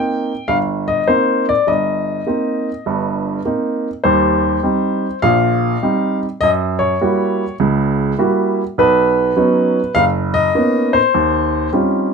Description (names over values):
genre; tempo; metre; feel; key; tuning
solo jazz; 101 BPM; 4/4; swing 67% on 8ths; C minor; A4 = 440 Hz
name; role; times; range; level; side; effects
warm upright piano; solo; 0.0-12.1 s; F#1 to G5; -14 LUFS; equal; none
room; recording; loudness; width
moderate studio reverb, RT60 0.6 s; minimal, uncompressed stereo recording; -14 LUFS; side -5 dB against mid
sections
0.0-4.0 A section; 4.0-12.1 B section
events
none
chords
0.0 Cm7; 4.0 Eb6; 6.4 Gb7b9; 8.8 Bmaj9; 11.1 Eb13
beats
0.49 1.08 | 1.67 2.27 2.86 3.45 | 4.05 4.64 5.23 5.82 | 6.42 7.01 7.60 8.19 | 8.78 9.37 9.96 10.56 | 11.15 11.74